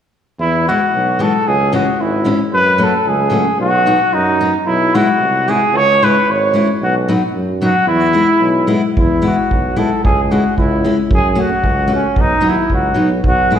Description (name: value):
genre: alpine folk, alpine dance band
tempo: 112 BPM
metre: 2/4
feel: rubato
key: E major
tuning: A4 = 441 Hz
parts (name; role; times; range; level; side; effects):
- mellow trumpet; melody; 0.4-13.6 s; C#4 to C#5; -14 LUFS; equal; slapback echo
- clear tuba; bass; 0.4-13.6 s; G#1 to F#2; -19 LUFS; right 1 dB; none
- fingerpicked steel-string acoustic guitar; accompaniment; 0.7-13.6 s; E3 to F#4; -18 LUFS; left 2 dB; slapback echo
- kick drum; drums; 9.0-13.4 s; none; -16 LUFS; right 1 dB; none
room: moderate lush hall reverb, RT60 1.8 s, small room ambience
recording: live gig heard through the venue's PA, recital hall reverb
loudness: -12 LUFS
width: side -9 dB against mid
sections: 0.4-9.0 A section; 9.0-13.6 A section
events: none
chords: 0.4 Eadd9; 1.5 C#m; 2.5 F#m; 3.6 B; 4.7 E/B; 5.8 C#m; 6.8 B; 7.9 E; 10.0 C#m; 11.1 F#m; 12.2 B